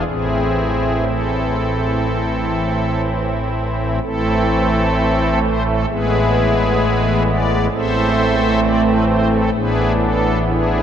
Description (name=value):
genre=classical, chorale-style piece for pipe organ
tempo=60-67 BPM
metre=4/4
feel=rubato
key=A minor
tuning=A4 = 440 Hz
part: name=pipe organ, strings celeste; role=solo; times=0.0-10.8 s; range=A1 to E5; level=-15 LUFS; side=equal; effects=none
room=wet huge ambient reverb, RT60 7.7 s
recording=in a vast, echoing space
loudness=-15 LUFS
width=side -9 dB against mid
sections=0.0-4.0 A section; 4.0-10.8 A section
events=none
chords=0.1 Am; 5.9 E/A; 7.7 Am; 9.5 E7/A